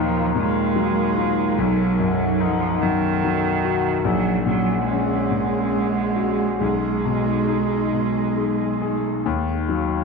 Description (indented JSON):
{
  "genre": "neoclassical piano and strings",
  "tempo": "67-74 BPM",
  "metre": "3/4",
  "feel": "rubato",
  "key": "Eb minor",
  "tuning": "A4 = 441 Hz",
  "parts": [
    { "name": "muted cello", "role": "second line", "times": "0.0-9.0 s", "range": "D#3 to Ab3", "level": "-23 LUFS", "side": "right 12 dB", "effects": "tape echo" },
    { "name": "warm concert grand piano", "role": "accompaniment", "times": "0.0-10.0 s", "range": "Bb1 to Ab4", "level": "-22 LUFS", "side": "left 8 dB", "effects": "none" },
    { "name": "warbly tape-like pad", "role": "sustained chords", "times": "0.0-10.0 s", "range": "Gb3 to F#5", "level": "-27 LUFS", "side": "left 1 dB", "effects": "chorus, built-in reverb" }
  ],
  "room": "wet echo chamber reverb, RT60 1.6 s, studio reverb",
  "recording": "1960s-style stereo with parts hard left and right",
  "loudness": "-19 LUFS",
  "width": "side -4 dB against mid",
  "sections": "0.0-9.2 A section",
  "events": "none",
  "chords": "0.0 Ebmadd9; 1.6 B; 4.1 Gbadd9/Bb; 6.6 Abm/Cb; 9.2 Ebmadd9"
}